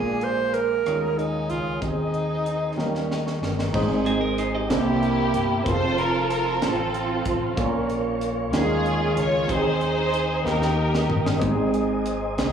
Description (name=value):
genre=slow gospel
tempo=62 BPM (dotted quarters)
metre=6/8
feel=straight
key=Ab major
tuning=A4 = 439 Hz
part: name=breathy tenor saxophone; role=melody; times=0.0-3.1 s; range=Eb4 to C5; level=-25 LUFS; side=right 3 dB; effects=slapback echo
part: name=warm concert grand piano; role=accompaniment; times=0.0-12.5 s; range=Ab2 to A5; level=-26 LUFS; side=left 1 dB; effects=slapback echo
part: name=mellow tonewheel organ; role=sustained chords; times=0.0-12.5 s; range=Bb3 to Eb6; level=-30 LUFS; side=right 2 dB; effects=fast rotary speaker, chorus vibrato
part: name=upright bass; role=bass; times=0.0-12.5 s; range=F1 to Eb2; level=-30 LUFS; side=equal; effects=none
part: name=crisp fusion drum kit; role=drums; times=0.2-12.5 s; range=crash cymbal, hi-hat, kick drum, rim click, snare drum, toms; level=-30 LUFS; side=equal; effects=none
part: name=clean electric guitar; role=second line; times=4.1-4.8 s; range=C4 to Eb5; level=-27 LUFS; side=right 7 dB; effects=slapback echo
part: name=rich studio string section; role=melody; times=4.7-12.5 s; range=Bb3 to Db5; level=-25 LUFS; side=right 1 dB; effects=slapback echo, tape echo
room=moderate club reverb, RT60 0.5 s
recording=live gig heard through the venue's PA, club reverb, studio reverb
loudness=-21 LUFS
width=side -8 dB against mid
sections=0.0-3.7 A section; 3.7-12.5 B section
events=drum fill 2.8-3.7, 10.5-11.4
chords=0.0 Bb7; 0.9 Eb9sus4; 1.8 Ab/Eb; 2.8 Eb7; 3.7 Ab; 4.7 C13; 5.7 F; 7.6 Bbm; 8.5 Eb9sus4; 9.5 Ab/Eb; 10.5 Eb; 11.4 Ab